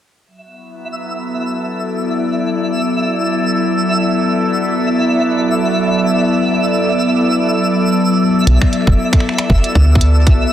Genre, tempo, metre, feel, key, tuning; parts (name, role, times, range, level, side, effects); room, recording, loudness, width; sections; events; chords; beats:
IDM; free time; A4 = 441 Hz
glassy FM pad; sustained chords; 0.8-10.5 s; F#3 to D5; -15 LUFS; equal; ensemble chorus, built-in reverb
twinkling granular texture; texture; 0.9-10.5 s; E5; -20 LUFS; equal; built-in reverb
woody FM bass; bass; 8.5-10.5 s; F#1 to D2; -11 LUFS; equal
glitchy drum kit; drums; 8.5-10.4 s; finger snaps, hi-hat; -22 LUFS; right 1 dB; low-pass filter on hats, soft clipping on snare, low-pass filter on snare, digital delay
electronic kick drum; drums; 8.6-10.4 s; -12 LUFS; equal
moderate lush hall reverb, RT60 2.2 s; dense, heavily limited modern master; -12 LUFS; side -11 dB against mid
0.3-10.5 A section
0.3 E9sus4
free time